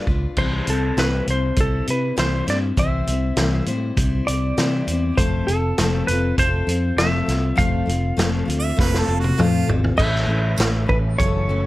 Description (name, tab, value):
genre	folk rock and heartland rock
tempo	100 BPM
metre	4/4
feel	straight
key	unclear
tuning	A4 = 440 Hz
part	clean lap steel guitar	melody	0.0-11.7 s	A4 to F5	-25 LUFS	right 1 dB	none
part	picked steel-string acoustic guitar	accompaniment	0.0-11.7 s	F#2 to C5	-24 LUFS	left 4 dB	none
part	picked electric bass	bass	0.1-11.7 s	F1 to C3	-22 LUFS	equal	none
part	vintage drum kit	drums	0.1-11.3 s	crash cymbal, hi-hat, kick drum, snare drum, toms	-23 LUFS	right 1 dB	none
part	bright harmonica	second line	8.6-9.7 s	F4 to E5	-26 LUFS	right 6 dB	slapback echo
part	tonewheel organ	sustained chords	10.0-11.7 s	C#4 to B4	-34 LUFS	right 1 dB	slow rotary speaker, overdrive, chorus vibrato
part	tambourine	percussion	10.6-10.7 s	none	-30 LUFS	right 6 dB	none
room	light reverb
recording	dark, warm production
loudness	-18 LUFS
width	side -17 dB against mid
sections	0.4-10.0 A section; 10.0-11.7 B section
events	drum fill 8.8-10.0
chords	0.4 C; 5.2 F; 10.0 Aadd9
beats	| 0.37 0.97 1.57 2.17 | 2.77 3.38 3.98 4.58 | 5.18 5.78 6.38 6.98 | 7.58 8.18 8.78 9.38 | 9.99 10.59 11.19